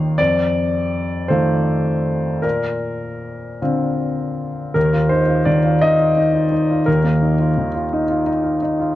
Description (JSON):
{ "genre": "neoclassical minimalist piano", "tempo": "50-58 BPM (dotted quarters)", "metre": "6/8", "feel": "rubato", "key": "unclear", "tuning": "A4 = 440 Hz", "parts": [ { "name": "clear grand piano", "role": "solo", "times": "0.0-9.0 s", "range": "Eb2 to G5", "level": "-16 LUFS", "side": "equal", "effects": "none" } ], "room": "light reverb", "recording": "worn, warbling old tape, cassette tape, warbly pitch drift", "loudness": "-16 LUFS", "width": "side -14 dB against mid", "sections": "0.0-4.7 A section; 4.7-9.0 B section", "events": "none", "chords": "0.2 F7; 2.4 Bbadd9; 4.7 Ebsus2" }